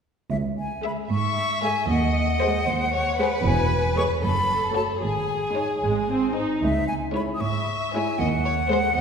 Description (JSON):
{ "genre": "cinematic, playful, whimsical film cue", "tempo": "76 BPM (dotted quarters)", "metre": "6/8", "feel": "straight", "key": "C# minor", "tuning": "A4 = 441 Hz", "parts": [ { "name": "bright silver concert flute", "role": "second line", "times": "0.3-9.0 s", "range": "E5 to D#6", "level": "-26 LUFS", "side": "left 2 dB", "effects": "none" }, { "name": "rich studio double bass section", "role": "bass", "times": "0.3-8.7 s", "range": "E1 to D#2", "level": "-28 LUFS", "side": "right 2 dB", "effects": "none" }, { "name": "rich symphonic cello section", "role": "bass", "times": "0.3-9.0 s", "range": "C#2 to G#2", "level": "-29 LUFS", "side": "right 3 dB", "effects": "none" }, { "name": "rich studio violin section", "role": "melody", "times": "0.8-8.9 s", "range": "B#4 to E5", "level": "-32 LUFS", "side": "left 3 dB", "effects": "none" }, { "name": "rich studio viola section", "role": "accompaniment", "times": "0.8-8.9 s", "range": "G#3 to G#4", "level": "-29 LUFS", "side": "right 2 dB", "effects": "none" }, { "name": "rich chamber violin section", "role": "second line", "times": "1.1-9.0 s", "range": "G#4 to E5", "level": "-28 LUFS", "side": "left 1 dB", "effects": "none" } ], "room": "wet concert hall reverb, RT60 2.3 s", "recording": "recorded in a church or concert hall", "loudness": "-21 LUFS", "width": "side -6 dB against mid", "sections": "0.3-9.0 A section", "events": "none", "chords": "0.3 C#m; 1.9 G#7/D#; 3.5 C#m/E; 4.2 F#m; 5.0 G#sus4; 5.8 G#; 6.6 C#m; 8.2 G#7/D#", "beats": "| 0.31 1.11 | 1.90 2.68 | 3.46 4.23 | 5.02 5.82 | 6.62 7.41 | 8.19 8.97" }